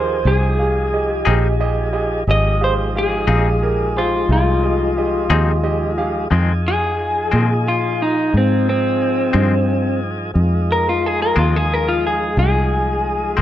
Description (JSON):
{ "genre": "slow blues", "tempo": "59 BPM (dotted quarters)", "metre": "12/8", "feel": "straight", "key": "F minor", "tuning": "A4 = 440 Hz", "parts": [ { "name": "electric guitar through a small old amp", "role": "melody", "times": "0.0-13.4 s", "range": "C4 to Eb5", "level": "-19 LUFS", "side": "left 1 dB", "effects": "spring reverb" }, { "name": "clear concert grand piano", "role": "accompaniment", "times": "0.0-6.2 s", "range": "G4 to F5", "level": "-23 LUFS", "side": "right 4 dB", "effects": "none" }, { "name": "tonewheel organ", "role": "sustained chords", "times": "0.0-13.4 s", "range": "F3 to Ab4", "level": "-26 LUFS", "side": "left 1 dB", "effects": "slow rotary speaker" }, { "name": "fingered electric bass", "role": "bass", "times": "0.0-13.4 s", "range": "G1 to Bb2", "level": "-19 LUFS", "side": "equal", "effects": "none" }, { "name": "semi-hollow electric guitar", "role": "accompaniment", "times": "1.3-13.4 s", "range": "F2 to Ab4", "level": "-20 LUFS", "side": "left 6 dB", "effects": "tremolo" } ], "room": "light reverb", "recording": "dry, close 1970s-style studio recording", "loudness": "-15 LUFS", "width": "side -12 dB against mid", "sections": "0.0-6.3 A section; 6.3-13.4 B section", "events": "clean electric guitar solo 6.3-13.4", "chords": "0.0 Fm7", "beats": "0.26 1.27 | 2.28 3.29 4.30 5.31 | 6.32 7.33 8.34 9.35 | 10.36 11.37 12.38 13.38" }